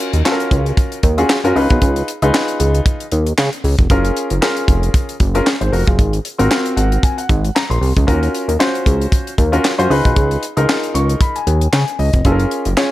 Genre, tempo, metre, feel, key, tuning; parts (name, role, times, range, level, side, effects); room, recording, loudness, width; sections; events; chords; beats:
early-eighties boogie funk; 115 BPM; 4/4; swing 56% on 16ths; A4 = 440 Hz
warm grand piano; accompaniment; 0.0-12.9 s; C4 to Db6; -18 LUFS; left 1 dB
tight funk drum kit; drums; 0.0-12.9 s; handclaps, hi-hat, kick drum, snare drum; -17 LUFS; equal
chorused synth bass; bass; 0.1-12.8 s; F1 to Db3; -15 LUFS; equal
small room ambience; -13 LUFS; side -15 dB against mid
0.0-12.9 A section
grand piano fill 6.5-8.1, 10.7-12.2
0.0 Ebm7; 1.6 Db9; 3.9 Gbmaj9; 6.0 Ab13; 8.1 Ebm7; 9.9 Db9; 12.2 Gbmaj9
0.25 0.77 1.29 | 1.81 2.34 2.86 3.38 | 3.90 4.42 4.94 5.47 | 5.99 6.51 7.03 7.55 | 8.07 8.60 9.12 9.64 | 10.16 10.68 11.21 11.73 | 12.25 12.77